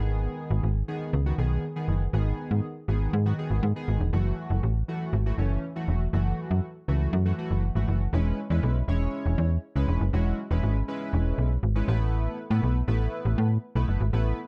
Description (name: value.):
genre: dance-pop.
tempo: 120 BPM.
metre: 4/4.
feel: straight.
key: E major.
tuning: A4 = 440 Hz.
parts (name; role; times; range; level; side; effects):
chorused polysynth; accompaniment; 0.0-14.4 s; D#3 to C#5; -34 LUFS; equal; plate reverb.
slap-like FM bass; bass; 0.0-14.3 s; E1 to A2; -26 LUFS; equal; none.
room: light reverb.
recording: dark, warm production.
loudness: -27 LUFS.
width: mono.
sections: 0.0-8.1 A section; 8.1-14.5 B section.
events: none.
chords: 0.0 G#m; 4.1 F#m7; 8.1 E6; 11.9 Asus2.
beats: | 0.13 0.63 1.13 1.63 | 2.13 2.63 3.13 3.63 | 4.13 4.63 5.13 5.63 | 6.13 6.63 7.13 7.63 | 8.13 8.63 9.13 9.63 | 10.13 10.63 11.13 11.63 | 12.13 12.63 13.13 13.63 | 14.13.